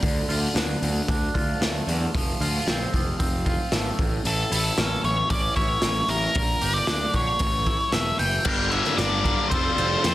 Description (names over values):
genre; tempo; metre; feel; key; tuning
quiet-loud alternative rock; 114 BPM; 4/4; straight; D minor; A4 = 440 Hz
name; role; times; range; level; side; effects
twangy electric guitar; arpeggios; 0.0-10.1 s; G2 to Bb4; -30 LUFS; right 2 dB; phaser, slapback echo
fuzz picked electric bass; bass; 0.0-10.1 s; E1 to F2; -27 LUFS; equal; overdrive
raw garage drum kit; drums; 0.0-10.1 s; crash cymbal, hi-hat, kick drum, ride cymbal, snare drum; -25 LUFS; equal; none
octave-fuzz lead guitar; melody; 4.3-10.1 s; A4 to G5; -25 LUFS; equal; distortion, slapback echo
high-gain distorted guitar; riff; 8.5-10.1 s; F2 to G3; -27 LUFS; left 10 dB; distortion
room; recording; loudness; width
light reverb, small room ambience; dense, heavily limited modern master; -21 LUFS; side -15 dB against mid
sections
0.0-8.5 A section; 8.5-10.1 B section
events
none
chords
0.0 Dm; 2.1 F; 4.0 A; 6.4 Gm; 7.4 A; 8.5 Gm; 9.5 Fadd9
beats
| 0.03 0.56 1.09 1.61 | 2.14 2.67 3.20 3.72 | 4.25 4.78 5.30 5.83 | 6.35 6.88 7.41 7.93 | 8.46 8.99 9.51 10.04